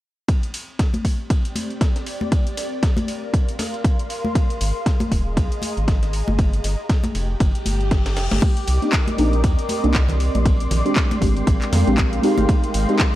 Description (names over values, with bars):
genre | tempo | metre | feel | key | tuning
deep house | 118 BPM | 4/4 | swing 58% on 16ths | C minor | A4 = 439 Hz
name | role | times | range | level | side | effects
breakbeat sampler-style drum kit | drums | 0.3-13.1 s | ride cymbal, snare drum | -35 LUFS | equal | sidechain pumping on cymbals, high-pass filter on cymbals, studio reverb, high-pass filter on snare
electronic kick drum | drums | 0.3-13.1 s | none | -18 LUFS | equal | overdrive, studio reverb
house drum kit | drums | 0.3-13.1 s | crash cymbal, handclaps, hi-hat | -29 LUFS | left 1 dB | overdrive, studio reverb
ethereal airy pad | texture | 1.2-13.2 s | Ab3 to D6 | -30 LUFS | equal | ensemble chorus, built-in reverb, sidechain pumping
congas | percussion | 0.9-12.5 s | none | -27 LUFS | left 1 dB | none
round analog bass | bass | 4.6-12.9 s | Eb1 to F2 | -21 LUFS | equal | sidechain pumping
reverse cymbal | sound effects | 7.6-8.4 s | none | -33 LUFS | left 6 dB | none
soft string machine | sustained chords | 8.8-13.2 s | Ab3 to C6 | -27 LUFS | equal | ensemble chorus, sidechain pumping
deep mellow chord stab | stabs | 8.8-13.1 s | Ab3 to G4 | -22 LUFS | equal | chorus, cassette tape, sidechain pumping, tape echo
room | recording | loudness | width
digital ambience | dry, gritty hardware recording | -18 LUFS | side -15 dB against mid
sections
0.3-8.4 A section; 8.4-13.2 B section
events
reverse cymbal 7.6-8.4; filter sweep on synth stab 8.4-13.2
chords
0.3 Csus2; 2.3 Bb69; 4.1 Ab; 6.4 G5; 8.4 Cm9; 10.5 Bb13; 12.2 Abmaj7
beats
| 0.28 0.79 1.30 1.81 | 2.32 2.83 3.34 3.84 | 4.35 4.86 5.37 5.88 | 6.39 6.89 7.40 7.91 | 8.42 8.93 9.44 9.95 | 10.45 10.96 11.47 11.98 | 12.49 13.00